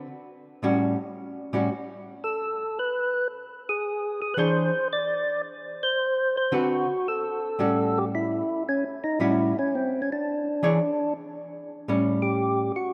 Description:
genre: jazz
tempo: 112 BPM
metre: 4/4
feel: swing 68% on 8ths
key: A mixolydian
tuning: A4 = 440 Hz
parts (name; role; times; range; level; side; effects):
- archtop guitar, miked and amplified; accompaniment; 0.0-12.7 s; A2 to C#5; -29 LUFS; equal; none
- percussive tonewheel organ; melody; 2.2-12.9 s; C4 to D5; -28 LUFS; equal; overdrive, slow rotary speaker
room: wet plate reverb, RT60 3.2 s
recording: rough home demo mix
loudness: -26 LUFS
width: mono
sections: 0.0-11.3 A section; 11.3-12.9 B section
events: tonewheel organ solo 11.3-12.9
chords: 0.0 N.C.; 0.6 A6; 2.8 E6; 4.9 D6; 7.1 A6; 10.3 E6; 11.3 A13

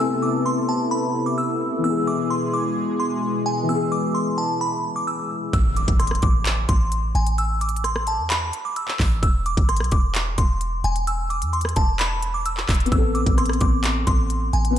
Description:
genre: hip hop, trap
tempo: 130 BPM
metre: 4/4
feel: half-time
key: A harmonic minor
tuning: A4 = 440 Hz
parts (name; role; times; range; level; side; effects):
- glassy synth bell; melody; 0.0-14.7 s; G#5 to E6; -25 LUFS; equal; chorus, low-pass filter, ping-pong delay
- dark grand piano; accompaniment; 0.0-5.6, 12.9-14.8 s; C3 to A4; -25 LUFS; left 5 dB; lush chorus, low-pass filter
- warm analog pad; sustained chords; 0.0-5.5 s; B2 to A4; -25 LUFS; equal; chorus
- downlifter and impact; sound effects; 0.0-1.8, 5.5-7.4 s; none; -35 LUFS; equal; none
- warm 808-style bass; bass; 5.5-14.8 s; E1 to E2; -23 LUFS; equal; none
- trap drum kit; drums; 5.5-14.8 s; handclaps, hi-hat, kick drum, rim click; -22 LUFS; equal; none
room: moderate plate reverb, RT60 2.2 s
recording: dreamy mix soaked in reverb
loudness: -19 LUFS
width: side -10 dB against mid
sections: 0.0-5.5 A section; 5.5-14.8 B section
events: impact 5.5-7.4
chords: 0.0 Amadd9; 1.8 E; 5.5 Am; 9.2 N.C.; 12.9 Amadd9

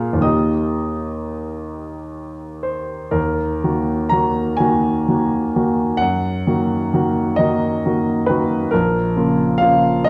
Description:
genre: classical, romantic nocturne for solo piano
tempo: 40-46 BPM (dotted quarters)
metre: 6/8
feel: rubato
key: Eb major, Eb minor from 3.2 s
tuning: A4 = 440 Hz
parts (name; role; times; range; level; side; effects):
- warm grand piano; solo; 0.0-10.1 s; Bb1 to F6; -19 LUFS; equal; none
room: wet recital hall reverb, RT60 1.4 s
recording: dark, warm production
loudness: -19 LUFS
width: mono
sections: 0.0-3.2 A section; 3.2-10.1 B section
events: none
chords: 0.2 Eb; 3.2 Ebm; 6.0 Ebm/Gb; 8.7 Bbm

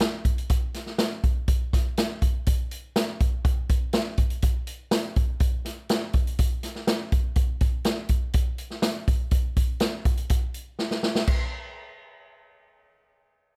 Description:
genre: soul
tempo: 122 BPM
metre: 4/4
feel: straight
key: none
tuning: none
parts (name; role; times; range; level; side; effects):
- swinging big-band drum kit; drums; 0.0-11.4 s; crash cymbal, hi-hat, kick drum, snare drum; -26 LUFS; equal; none
room: light reverb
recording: none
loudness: -26 LUFS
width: mono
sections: 0.0-11.3 A section; 11.3-13.6 B section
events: drum fill 10.8-11.3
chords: none

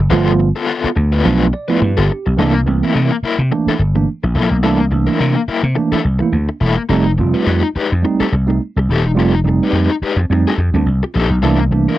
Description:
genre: funk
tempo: 106 BPM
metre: 4/4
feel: swing 56% on 16ths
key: unclear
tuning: A4 = 439 Hz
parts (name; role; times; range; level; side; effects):
- crunchy overdriven guitar; accompaniment; 0.0-12.0 s; Bb3 to B4; -19 LUFS; left 5 dB; tremolo
- vintage slap bass; bass; 0.0-11.9 s; Eb1 to C3; -15 LUFS; equal; none
- tine electric piano; stabs; 0.1-12.0 s; E3 to D5; -17 LUFS; right 5 dB; medium tremolo
room: little or no reverb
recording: dry, close 1970s-style studio recording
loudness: -13 LUFS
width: side -14 dB against mid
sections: 0.0-2.4 A section; 2.4-12.0 B section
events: tine electric piano fill 1.2-2.4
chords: 0.0 G9; 2.4 C13; 6.9 F9; 11.4 C13

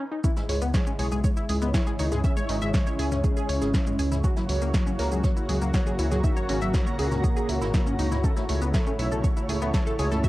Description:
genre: melodic techno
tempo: 120 BPM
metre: 4/4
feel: straight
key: C# minor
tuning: A4 = 441 Hz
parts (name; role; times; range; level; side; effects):
- tight sequenced synth; arpeggios; 0.0-10.3 s; G#3 to E5; -33 LUFS; equal; chorus, sidechain pumping, tape echo
- fat analog lead; melody; 0.2-10.3 s; F#3 to E5; -31 LUFS; equal; wide subtle chorus, sidechain pumping, cassette tape, tape echo
- warm analog pad; sustained chords; 0.2-10.3 s; C#3 to F#4; -34 LUFS; left 1 dB; chorus, sidechain pumping
- deep house drum kit; drums; 0.2-10.3 s; hi-hat, shaker, snare drum, toms; -34 LUFS; equal; overdrive, cassette tape
- electronic kick drum; drums; 0.2-10.3 s; none; -24 LUFS; equal; overdrive, cassette tape
- jazz brush drum kit; drums; 0.2-10.3 s; hi-hat, snare drum; -46 LUFS; right 1 dB; none
- granular cloud pad; texture; 0.2-10.3 s; E4 to A#5; -35 LUFS; equal; built-in reverb, sidechain pumping
- dark detuned saw bass; bass; 0.5-10.2 s; G#1 to C#2; -28 LUFS; equal; sidechain pumping, high-pass filter
room: digital ambience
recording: home recording on cassette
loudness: -22 LUFS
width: side -17 dB against mid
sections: 0.2-10.3 A section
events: break 0.0; drop 0.2-10.3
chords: 0.2 C#m; 4.2 F#/C#; 8.2 A

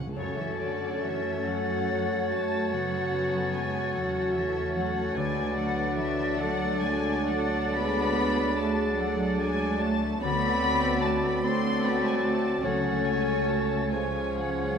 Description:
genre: classical, slow romantic movement for symphony orchestra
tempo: 41-51 BPM (dotted quarters)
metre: 12/8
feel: rubato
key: F# minor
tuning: A4 = 439 Hz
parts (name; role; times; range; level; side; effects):
- muted studio violin section; second line; 0.0-14.8 s; E#4 to F#5; -38 LUFS; left 2 dB; none
- concert harp; arpeggios; 0.0-14.8 s; F#2 to D5; -37 LUFS; left 8 dB; none
- timpani; percussion; 0.0-0.1, 12.6-13.9 s; C#3; -41 LUFS; right 2 dB; none
- muted studio violin section; melody; 0.2-14.8 s; C#5 to C6; -34 LUFS; left 4 dB; none
- clear oboe; second line; 0.2-14.8 s; C#5 to D5; -37 LUFS; right 1 dB; none
- silver concert flute; second line; 0.2-14.8 s; G#6 to A6; -35 LUFS; left 2 dB; none
- warm clarinet; second line; 0.2-14.8 s; C4 to F#4; -36 LUFS; equal; none
- muted studio viola section; accompaniment; 0.2-14.8 s; F#3 to D4; -35 LUFS; equal; none
- warm bassoon; accompaniment; 0.2-14.8 s; E#3 to F#3; -35 LUFS; right 2 dB; none
- mellow French horn section; sustained chords; 0.2-14.8 s; F#4 to A4; -32 LUFS; left 2 dB; none
- muted studio cello section; bass; 0.2-14.8 s; C#3 to C4; -34 LUFS; right 3 dB; none
- muted studio double bass section; bass; 0.2-14.8 s; C#2 to F#2; -36 LUFS; right 4 dB; none
room: wet concert hall reverb, RT60 2.1 s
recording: none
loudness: -25 LUFS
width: side -6 dB against mid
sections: 0.2-14.8 A section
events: timpani fill 0.0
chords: 0.2 F#m; 5.2 D; 10.2 D7; 12.6 F#m/C#; 13.9 C#

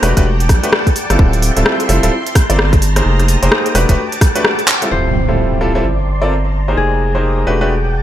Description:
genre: UK garage, two-step garage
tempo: 129 BPM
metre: 4/4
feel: swing 61% on 16ths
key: unclear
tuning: A4 = 440 Hz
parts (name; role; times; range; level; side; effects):
- soft string machine; sustained chords; 0.0-8.0 s; D5 to Eb6; -23 LUFS; equal; ensemble chorus, sidechain pumping
- bright grand piano; stabs; 0.0-7.7 s; G3 to D5; -18 LUFS; equal; digital delay
- saturated sub bass; bass; 0.0-8.0 s; D1 to B1; -15 LUFS; equal; none
- garage drum kit; drums; 0.0-4.9 s; handclaps, hi-hat, rim click; -16 LUFS; equal; none
- electronic kick drum; drums; 0.2-4.3 s; none; -13 LUFS; equal; none
- concert harp; melody; 4.9-8.0 s; Ab4 to C5; -21 LUFS; left 1 dB; dub echo
- impact; sound effects; 4.9-6.8 s; none; -22 LUFS; equal; none
room: little or no reverb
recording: none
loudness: -11 LUFS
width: side -12 dB against mid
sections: 0.0-4.9 A section; 4.9-8.0 B section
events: drum fill 4.7; band accent 4.7; impact 4.9-6.8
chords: 0.0 Em11; 1.2 Dm11; 2.1 Gmadd9; 3.1 Fm11; 3.8 Em11; 4.9 Dm11; 5.8 Gmadd9; 6.8 Fm11; 7.5 Em11

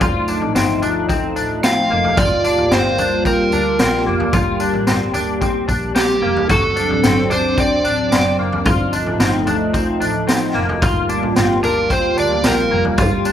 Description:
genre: dream pop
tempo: 111 BPM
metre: 4/4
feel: straight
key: G minor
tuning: A4 = 440 Hz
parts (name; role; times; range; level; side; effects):
- warm analog pad; sustained chords; 0.0-13.3 s; F3 to G4; -20 LUFS; equal; chorus, plate reverb
- semi-hollow electric guitar; arpeggios; 0.0-13.3 s; Bb3 to F#4; -21 LUFS; left 3 dB; ensemble chorus, ping-pong delay, plate reverb
- dark double bass; bass; 0.0-13.3 s; F1 to D2; -25 LUFS; equal; none
- raw garage drum kit; drums; 0.0-13.3 s; kick drum, snare drum, tambourine, toms; -20 LUFS; equal; none
- overdriven slide guitar; melody; 1.6-8.4, 11.6-12.8 s; G4 to F5; -19 LUFS; right 1 dB; ping-pong delay, plate reverb
room: moderate studio reverb, RT60 0.6 s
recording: rough home demo mix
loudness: -14 LUFS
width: side -10 dB against mid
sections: 0.0-13.3 A section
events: none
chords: 0.0 F7/G; 2.2 Gm11; 6.5 D7/G; 8.7 F7/G; 10.8 Gm11

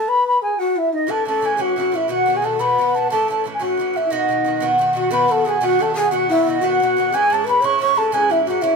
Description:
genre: celtic folk, Celtic jig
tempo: 119 BPM (dotted quarters)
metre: 6/8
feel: straight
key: B mixolydian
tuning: A4 = 438 Hz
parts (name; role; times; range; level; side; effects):
- baroque flute; melody; 0.0-8.8 s; D#5 to C#6; -18 LUFS; right 1 dB; none
- breathy mellow long shakuhachi; second line; 0.0-8.8 s; D#4 to C#5; -21 LUFS; left 3 dB; none
- Irish bouzouki; accompaniment; 1.1-8.8 s; G#2 to F#4; -22 LUFS; right 2 dB; none
room: moderate studio reverb, RT60 0.7 s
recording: band playing live in one room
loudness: -16 LUFS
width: side -4 dB against mid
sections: 0.0-5.1 A section; 5.1-8.8 B section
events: none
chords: 0.0 N.C.; 1.1 A; 2.1 B; 3.1 A; 4.1 B; 7.1 C#m

